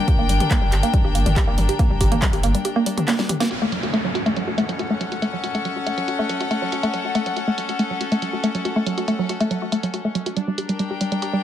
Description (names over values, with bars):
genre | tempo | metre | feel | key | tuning
driving peak-time techno | 140 BPM | 4/4 | straight | F# phrygian | A4 = 440 Hz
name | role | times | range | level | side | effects
rich chamber string section | texture | 0.0-11.4 s | C#4 to G5 | -26 LUFS | left 4 dB | sidechain pumping
woody wave-folded pluck | riff | 0.1-11.4 s | F#3 to G4 | -23 LUFS | equal | chorus, tube saturation, sidechain pumping, ping-pong delay
electronic kick drum | drums | 0.1-2.3 s | none | -19 LUFS | equal | none
techno drum kit | drums | 0.1-11.3 s | handclaps, hi-hat, snare drum, toms | -27 LUFS | equal | low-pass filter on hats, low-pass filter on toms, low-pass filter on snare, low-pass filter on room
saturated sub bass | bass | 0.2-2.5 s | G1 | -21 LUFS | equal | tube saturation, sidechain pumping, low-pass filter
downlifter | sound effects | 3.5-6.9 s | none | -30 LUFS | right 1 dB | none
room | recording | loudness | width
light reverb | none | -19 LUFS | side -11 dB against mid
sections
0.0-3.5 A section; 3.5-11.4 B section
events
break 2.6-3.5; drum fill 3.1-3.5; band accent 3.4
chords
0.0 Gm; 3.5 F#m; 10.4 Gm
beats
| 0.08 0.51 0.94 1.36 | 1.79 2.22 2.65 3.08 | 3.51 3.94 4.37 4.79 | 5.22 5.65 6.08 6.51 | 6.94 7.37 7.79 8.22 | 8.65 9.08 9.51 9.94 | 10.37 10.79 11.22